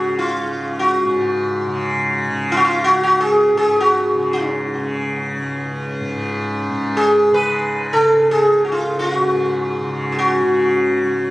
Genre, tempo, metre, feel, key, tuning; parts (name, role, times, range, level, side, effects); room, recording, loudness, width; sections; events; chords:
indian classical, Hindustani; free time; A4 = 441 Hz
sitar; melody; 0.0-11.3 s; C#4 to B4; -16 LUFS; equal; tape echo
tanpura; drone; 0.0-11.3 s; C#2 to C#3; -22 LUFS; equal
moderate recital hall reverb, RT60 1.6 s; recorded on a phone in the room, club reverb, compression; -15 LUFS; side -18 dB against mid
0.0-6.7 A section; 6.7-11.3 A section